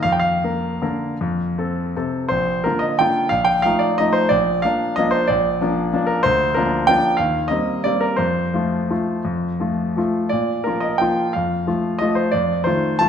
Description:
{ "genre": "classical, piano waltz", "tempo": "152-198 BPM", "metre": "3/4", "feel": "rubato", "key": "Bb major", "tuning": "A4 = 439 Hz", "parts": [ { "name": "clear concert grand piano", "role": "solo", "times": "0.0-13.1 s", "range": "Bb1 to A5", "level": "-17 LUFS", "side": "equal", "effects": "none" } ], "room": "wet recital hall reverb, RT60 1.4 s", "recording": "minimal, uncompressed stereo recording", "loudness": "-17 LUFS", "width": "side -8 dB against mid", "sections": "0.0-2.3 A section; 2.3-13.1 B section", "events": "none", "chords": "0.0 Bb/F; 1.2 F; 2.3 Bb; 3.3 F7/Bb; 4.3 Bb; 6.3 Bb/D; 7.2 Cm7/Eb; 8.2 F; 10.3 Bb; 11.3 F; 12.3 F7" }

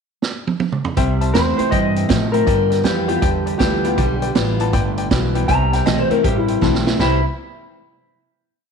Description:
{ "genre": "rockabilly", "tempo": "159 BPM", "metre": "4/4", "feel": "swing 64% on 8ths", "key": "C major", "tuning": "A4 = 440 Hz", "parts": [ { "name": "vintage drum kit", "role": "drums", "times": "0.2-7.1 s", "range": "hi-hat, kick drum, snare drum, toms", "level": "-21 LUFS", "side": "right 3 dB", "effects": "none" }, { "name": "clear upright piano", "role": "accompaniment", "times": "1.0-7.2 s", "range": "B4 to A5", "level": "-27 LUFS", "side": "left 10 dB", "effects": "none" }, { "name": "picked steel-string acoustic guitar", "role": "accompaniment", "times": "1.0-7.2 s", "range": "G2 to F4", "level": "-24 LUFS", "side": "left 10 dB", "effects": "none" }, { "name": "electric guitar through a small old amp", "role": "riff", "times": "1.0-7.2 s", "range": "G2 to E4", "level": "-24 LUFS", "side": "right 11 dB", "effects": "none" }, { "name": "upright bass", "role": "bass", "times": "1.0-7.2 s", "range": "G1 to A2", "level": "-21 LUFS", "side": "equal", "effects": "none" }, { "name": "electric guitar through a small old amp", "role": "melody", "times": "1.3-7.2 s", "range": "E4 to Bb5", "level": "-20 LUFS", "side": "left 2 dB", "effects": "tape echo" } ], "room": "light reverb, small room ambience", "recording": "1960s-style stereo with parts hard left and right", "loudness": "-15 LUFS", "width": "side -6 dB against mid", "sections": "0.0-1.0 pickup bar; 1.0-7.0 A section; 7.0-8.5 final chord", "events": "drum fill 0.2-1.0, 6.6-7.0", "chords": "0.0 N.C.; 1.0 C; 2.5 G7; 5.5 C" }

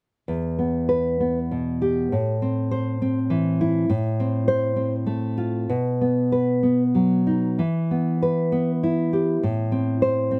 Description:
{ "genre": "romantic piece for solo classical guitar", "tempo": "61-70 BPM (dotted quarters)", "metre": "6/8", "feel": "rubato", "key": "E minor", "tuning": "A4 = 441 Hz", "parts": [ { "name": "nylon-string guitar", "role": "solo", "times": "0.3-10.4 s", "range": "E2 to C5", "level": "-23 LUFS", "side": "equal", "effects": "none" } ], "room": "little or no reverb", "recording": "close, detailed microphones", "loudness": "-23 LUFS", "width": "mono", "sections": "0.3-10.4 A section", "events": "none", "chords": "0.3 Em; 2.1 Am; 3.9 F/A; 5.7 B; 7.6 Em; 9.4 Am" }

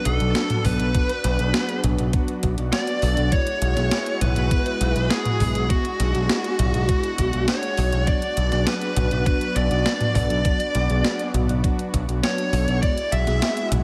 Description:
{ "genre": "synthwave", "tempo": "101 BPM", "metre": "4/4", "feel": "straight", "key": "B dorian", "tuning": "A4 = 440 Hz", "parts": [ { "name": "dark smooth lead guitar", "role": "melody", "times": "0.0-13.7 s", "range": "F#4 to E5", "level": "-29 LUFS", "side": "equal", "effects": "overdrive, digital delay, shimmer reverb" }, { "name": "string machine, violins", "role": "second line", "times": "0.0-13.7 s", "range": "F#4 to E5", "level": "-37 LUFS", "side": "equal", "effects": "ensemble chorus, cassette tape, digital delay, shimmer reverb" }, { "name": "lush unison pad", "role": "sustained chords", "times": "0.0-13.8 s", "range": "G#3 to F#4", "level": "-33 LUFS", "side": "equal", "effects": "chorus, sidechain pumping, shimmer reverb" }, { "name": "mellow synth brass", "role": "stabs", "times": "0.0-13.8 s", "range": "F#3 to B4", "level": "-31 LUFS", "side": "equal", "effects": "chorus, cassette tape, shimmer reverb" }, { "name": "impact", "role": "sound effects", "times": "0.0-0.9 s", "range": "none", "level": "barely audible", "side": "none", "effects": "none" }, { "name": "modern bright picked electric bass", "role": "bass", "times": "0.1-13.8 s", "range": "B1", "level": "-24 LUFS", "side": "equal", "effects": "sidechain pumping" }, { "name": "clean 12-bit digital drum machine", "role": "drums", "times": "0.1-13.8 s", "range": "hi-hat, snare drum, toms", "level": "-28 LUFS", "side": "equal", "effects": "overdrive, studio reverb, gated reverb" }, { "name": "electronic kick drum", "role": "drums", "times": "0.6-12.9 s", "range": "none", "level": "-25 LUFS", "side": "equal", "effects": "studio reverb" } ], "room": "light reverb, digital ambience", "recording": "none", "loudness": "-22 LUFS", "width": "mono", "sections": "0.0-13.8 A section", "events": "impact 0.0-0.9", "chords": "0.0 Bm; 3.3 Eadd9/B; 8.1 Bm; 12.8 Eadd9/B" }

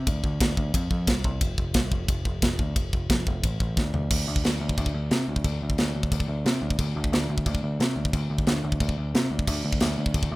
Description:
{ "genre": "heavy metal", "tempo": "179 BPM", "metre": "4/4", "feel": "straight", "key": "D minor", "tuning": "A4 = 441 Hz", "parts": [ { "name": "overdriven picked electric bass", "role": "bass", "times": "0.0-10.4 s", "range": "F1 to C3", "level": "-27 LUFS", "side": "equal", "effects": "none" }, { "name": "tight metal drum kit", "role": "drums", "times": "0.1-10.3 s", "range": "china cymbal, crash cymbal, kick drum, ride cymbal, snare drum, toms", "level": "-25 LUFS", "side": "equal", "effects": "none" } ], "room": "light reverb", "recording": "rough home demo mix", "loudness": "-23 LUFS", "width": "side -20 dB against mid", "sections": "0.0-4.1 A section; 4.1-10.4 B section", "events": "drum fill 3.8-4.1", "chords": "none" }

